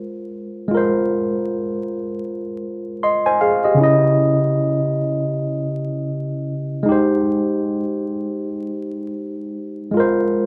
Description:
R&B; 78 BPM; 4/4; swing 60% on 16ths; Ab major; A4 = 440 Hz
tine electric piano; solo; 0.0-10.5 s; Db3 to C6; -20 LUFS; equal
moderate studio reverb, RT60 0.5 s; band playing live in one room, vinyl crackle; -20 LUFS; mono
0.0-9.9 A section
0.0 Ab69; 3.8 Dbmadd9; 6.9 Abmaj7; 9.9 Ab69
| 0.70 1.47 2.24 3.01 | 3.78 4.55 5.32 6.09 | 6.86 7.63 8.39 9.16 | 9.93

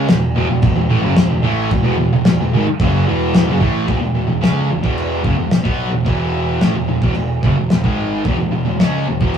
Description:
garage rock duo or trio; 110 BPM; 4/4; straight; E major; A4 = 440 Hz
fuzz guitar; riff; 0.0-9.4 s; E2 to C#4; -17 LUFS; equal; distortion
overdriven picked electric bass; bass; 0.0-9.4 s; E1 to C#2; -20 LUFS; right 1 dB
cloth-damped thuddy drum kit; drums; 0.1-9.4 s; crash cymbal, kick drum, snare drum; -18 LUFS; equal
wet booth ambience, RT60 0.3 s; rough rehearsal-room recording, warm saturation; -14 LUFS; side -8 dB against mid
0.0-3.9 A section; 3.9-9.4 B section
0.0 E5; 3.9 E
0.07 0.62 1.16 | 1.70 2.25 2.79 3.34 | 3.88 4.43 4.97 5.52 | 6.07 6.61 7.16 7.70 | 8.25 8.80 9.34

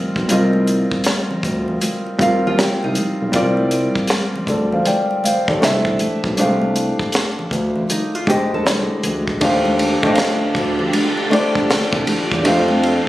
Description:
R&B, neo-soul; 79 BPM; 4/4; swing 63% on 16ths; A4 = 439 Hz
warm concert grand piano; accompaniment; 0.0-13.1 s; D3 to G5; -18 LUFS; equal
smooth gliding synth bass; bass; 0.2-13.0 s; B1 to F2; -22 LUFS; equal
compact cocktail drum kit; drums; 0.2-13.1 s; hi-hat, kick drum, ride cymbal, snare drum; -21 LUFS; equal
congas; percussion; 0.3-12.8 s; -28 LUFS; left 1 dB
nylon-string guitar; second line; 2.5-3.3, 7.9-9.4 s; Eb4 to A4; -23 LUFS; right 1 dB
string machine, violins; sustained chords; 9.4-13.1 s; D3 to G4; -23 LUFS; right 1 dB; ensemble chorus
small room ambience; recorded on a phone in the room, studio reverb; -15 LUFS; side -15 dB against mid
0.0-9.4 A section; 9.4-13.1 B section
0.0 Cm11; 3.3 Bb69/C; 5.6 C69; 6.4 F13/C; 9.4 Ebmaj9; 12.5 F69
| 0.30 1.06 1.82 2.58 | 3.34 4.10 4.86 5.62 | 6.38 7.14 7.90 8.66 | 9.42 10.18 10.94 11.70 | 12.46

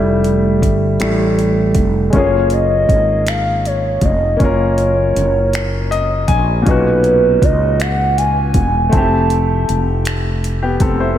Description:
slow six-eight R&B; 53 BPM (dotted quarters); 6/8; straight; F# major; A4 = 439 Hz
clear baby grand piano; accompaniment; 0.0-11.2 s; A#2 to G#5; -18 LUFS; left 1 dB
fretless electric bass; bass; 0.0-11.2 s; E1 to C#2; -17 LUFS; equal; wide subtle chorus
smooth R&B drum kit; drums; 0.2-11.0 s; finger snaps, hi-hat, kick drum; -19 LUFS; equal
hollow clarinet-like synth lead; melody; 2.1-9.7 s; B4 to A5; -17 LUFS; right 1 dB; chorus, tape echo
moderate lush hall reverb, RT60 2.9 s; dreamy mix soaked in reverb; -12 LUFS; side -11 dB against mid
0.0-2.1 A section; 2.1-11.2 B section
grand piano solo 0.0-2.1; grand piano fill 5.5-6.7
0.0 Fmaj9; 2.1 F#maj9; 6.7 Bmaj9; 8.9 Fmaj9
1.00 | 2.13 3.27 | 4.40 5.53 | 6.66 7.79 | 8.93 10.06

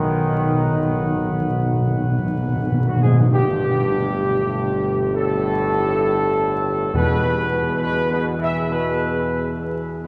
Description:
classical; 67 BPM; 4/4; straight; A4 = 438 Hz
dark trumpet section; melody; 0.0-10.1 s; F#4 to F#5; -26 LUFS; equal
clear trombone section; sustained chords; 0.0-10.1 s; F#2 to E3; -30 LUFS; equal
dark French horn section; sustained chords; 0.0-10.1 s; D#3 to G#4; -29 LUFS; equal
warm tuba; bass; 0.0-10.1 s; G1 to E2; -27 LUFS; equal
timpani; percussion; 0.0-8.2 s; E2 to B2; -24 LUFS; equal
wet cathedral reverb, RT60 5.0 s; dark, warm production, vinyl crackle; -20 LUFS; mono
0.0-3.3 A section; 3.3-10.1 B section
timpani fill 0.0-3.3
0.0 B; 3.3 Gsus2; 6.9 E
0.53 1.48 2.40 | 3.34 4.25 5.14 6.04 | 6.94 7.83 8.71 9.60

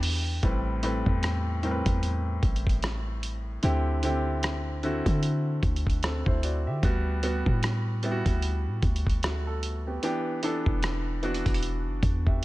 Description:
contemporary R&B; 75 BPM; 4/4; swing 58% on 16ths; A dorian; A4 = 441 Hz
clear baby grand piano; accompaniment; 0.0-12.4 s; A2 to E5; -31 LUFS; equal
warm 808-style bass; bass; 0.0-12.4 s; E1 to D3; -28 LUFS; equal
dusty soul sampler-style drum kit; drums; 0.0-12.4 s; hi-hat, kick drum, rim click; -28 LUFS; equal
little or no reverb; -25 LUFS; side -18 dB against mid
0.4-12.4 A section
0.4 Am9; 3.6 D9sus4; 6.8 Gmaj9/D; 10.0 Em7
| 0.43 1.23 2.03 2.83 | 3.63 4.43 5.23 6.03 | 6.83 7.63 8.43 9.23 | 10.03 10.83 11.63 12.43

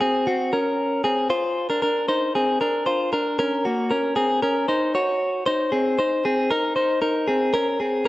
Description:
indie pop; 116 BPM; 4/4; straight; Eb dorian; A4 = 440 Hz
direct-recorded clean electric guitar; solo; 0.0-8.1 s; Bb3 to Db5; -20 LUFS; equal; spring reverb, slapback echo
little or no reverb; dry, close 1970s-style studio recording; -20 LUFS; side -17 dB against mid
0.0-3.4 A section; 3.4-8.1 B section
0.0 Ab7; 1.3 Bbadd9; 3.4 Ebm7; 5.5 Abadd9; 7.5 Bbmadd9
0.26 0.78 | 1.30 1.82 2.34 2.86 | 3.38 3.90 4.42 4.94 | 5.46 5.98 6.50 7.01 | 7.53 8.05

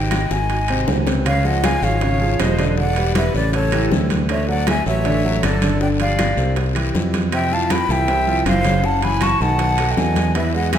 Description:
Afro-Cuban jazz; 158 BPM; 4/4; straight; A4 = 439 Hz
breathy jazz flute; melody; 0.0-10.8 s; C#5 to Db6; -23 LUFS; left 1 dB
bright reedy jazz flute; second line; 0.0-10.8 s; A4 to A5; -27 LUFS; left 2 dB
warm concert grand piano; accompaniment; 0.0-10.8 s; C3 to E5; -23 LUFS; right 1 dB
modern bright fingered electric bass; bass; 0.0-10.8 s; Fb1 to F2; -20 LUFS; equal
bongos; percussion; 0.1-10.8 s; -30 LUFS; left 5 dB
claves; percussion; 0.1-10.8 s; -34 LUFS; right 2 dB
congas; percussion; 0.1-10.8 s; -26 LUFS; equal
guiro; percussion; 0.1-10.8 s; -34 LUFS; left 5 dB
timbales; percussion; 0.1-10.8 s; -29 LUFS; right 7 dB
moderate scoring stage reverb, RT60 1.7 s; minimal, uncompressed stereo recording; -16 LUFS; side -9 dB against mid
0.0-1.3 A section; 1.3-10.8 B section
drum fill 0.1-1.3
0.5 Ab7; 1.3 Dbmaj9; 2.8 Em9; 3.5 A7; 4.3 Dmaj9; 5.8 G7sus4; 6.6 C; 7.3 Fsus2; 8.8 Gb5; 9.6 Cb6
0.12 0.50 0.88 | 1.26 1.64 2.02 2.40 | 2.78 3.16 3.54 3.92 | 4.30 4.68 5.05 5.43 | 5.81 6.19 6.57 6.95 | 7.33 7.71 8.08 8.46 | 8.84 9.22 9.60 9.98 | 10.35 10.73

